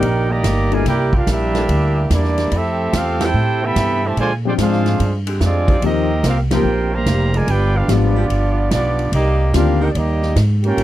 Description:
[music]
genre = jazz, big band swing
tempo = 145 BPM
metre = 4/4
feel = swing 66% on 8ths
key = unclear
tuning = A4 = 440 Hz
[part]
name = clear trumpet section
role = melody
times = 0.0-10.8 s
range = Bb3 to B5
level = -21 LUFS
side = right 2 dB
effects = none
[part]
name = mellow trombone section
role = second line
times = 0.0-10.8 s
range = C3 to G4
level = -22 LUFS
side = right 3 dB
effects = none
[part]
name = edgy saxophone section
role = sustained chords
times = 0.0-10.8 s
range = D3 to D5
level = -26 LUFS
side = equal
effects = none
[part]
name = upright bass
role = bass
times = 0.0-10.8 s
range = F1 to Bb2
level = -18 LUFS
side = equal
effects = none
[part]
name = swinging big-band drum kit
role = drums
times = 0.0-10.8 s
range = hi-hat, kick drum, ride cymbal, snare drum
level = -24 LUFS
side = right 1 dB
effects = none
[part]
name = warm grand piano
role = accompaniment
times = 0.7-0.8, 4.5-9.8 s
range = Eb3 to G5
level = -20 LUFS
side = left 12 dB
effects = none
[sound]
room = little or no reverb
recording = dry, close 1970s-style studio recording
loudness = -14 LUFS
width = side -14 dB against mid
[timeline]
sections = 0.0-10.8 A section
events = band accent 3.1, 6.4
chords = 0.0 Cm9; 0.9 C9; 2.5 Fmaj9; 4.2 Bb13; 7.5 G7; 9.1 Cm9

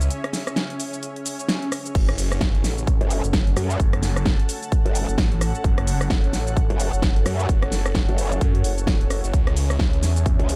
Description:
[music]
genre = bass house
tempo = 130 BPM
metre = 4/4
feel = swing 59% on 16ths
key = F# minor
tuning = A4 = 441 Hz
[part]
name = phased detuned saw bass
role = bass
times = 0.0-10.4 s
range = F#1 to F#2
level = -26 LUFS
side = equal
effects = phaser, tube saturation, sidechain pumping
[part]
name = big-room dance drum kit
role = drums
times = 0.0-10.6 s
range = crash cymbal, hi-hat, rim click, shaker, snare drum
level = -29 LUFS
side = equal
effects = studio reverb
[part]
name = granular cloud pad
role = texture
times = 0.0-10.6 s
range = C#4 to A5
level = -36 LUFS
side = equal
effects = built-in reverb, sidechain pumping
[part]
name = dark analog pad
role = sustained chords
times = 2.4-10.6 s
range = C#4 to G#5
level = -35 LUFS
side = equal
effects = chorus, sidechain pumping
[part]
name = electronic kick drum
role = drums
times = 1.9-10.4 s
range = none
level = -23 LUFS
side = equal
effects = studio reverb
[part]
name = growl bass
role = bass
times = 3.0-10.6 s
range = F#1 to F#2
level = -25 LUFS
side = equal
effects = chorus, tube saturation, sidechain pumping
[sound]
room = little or no reverb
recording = none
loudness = -22 LUFS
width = mono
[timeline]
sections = 0.0-10.6 A section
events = break 0.1-1.9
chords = 0.0 C#m; 1.9 F#m; 9.3 C#m

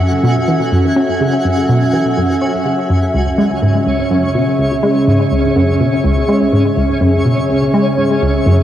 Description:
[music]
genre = ambient, sequencer-driven space music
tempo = 124 BPM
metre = 4/4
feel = straight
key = C# minor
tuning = A4 = 437 Hz
[part]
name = evolving wavetable pad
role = sustained chords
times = 0.0-8.6 s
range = C#3 to E5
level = -15 LUFS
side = equal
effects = chorus, built-in reverb, cassette tape
[part]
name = analog pluck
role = riff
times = 0.0-8.6 s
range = C#2 to C#4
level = -14 LUFS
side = equal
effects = chorus, cassette tape, ping-pong delay
[part]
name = twinkling granular texture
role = texture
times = 0.0-8.6 s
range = C#4 to G#5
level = -20 LUFS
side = equal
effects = built-in reverb, cassette tape
[sound]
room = moderate spring reverb, RT60 2.6 s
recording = home recording on cassette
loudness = -11 LUFS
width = side -11 dB against mid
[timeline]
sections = 0.0-8.6 A section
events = none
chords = 0.0 F#m7; 3.1 C#m

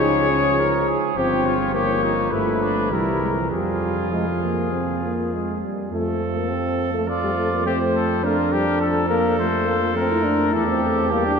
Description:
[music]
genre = classical, brass quintet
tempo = 104 BPM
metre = 4/4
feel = straight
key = F minor, F major from 5.9 s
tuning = A4 = 440 Hz
[part]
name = clear trumpet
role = melody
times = 0.0-11.4 s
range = F4 to Db5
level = -25 LUFS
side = left 6 dB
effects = none
[part]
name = clear trumpet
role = second line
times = 0.0-11.4 s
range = D4 to D5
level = -27 LUFS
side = right 6 dB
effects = none
[part]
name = mellow French horn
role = accompaniment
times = 0.0-11.4 s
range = F3 to E4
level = -24 LUFS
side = left 2 dB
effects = none
[part]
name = warm euphonium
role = accompaniment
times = 0.0-11.4 s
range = E3 to C4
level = -27 LUFS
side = right 3 dB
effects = none
[part]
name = mellow bass trombone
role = bass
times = 0.0-11.4 s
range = G1 to F2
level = -26 LUFS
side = right 2 dB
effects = none
[sound]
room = wet cathedral reverb, RT60 5.8 s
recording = none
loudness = -19 LUFS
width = side -6 dB against mid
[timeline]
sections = 0.0-5.9 A section; 5.9-11.4 A section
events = none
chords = 0.0 Db; 1.2 Gm7b5; 2.3 G7; 2.9 C7; 3.5 Fm; 5.9 F; 8.2 Gm7/F (rootless); 10.5 C/E

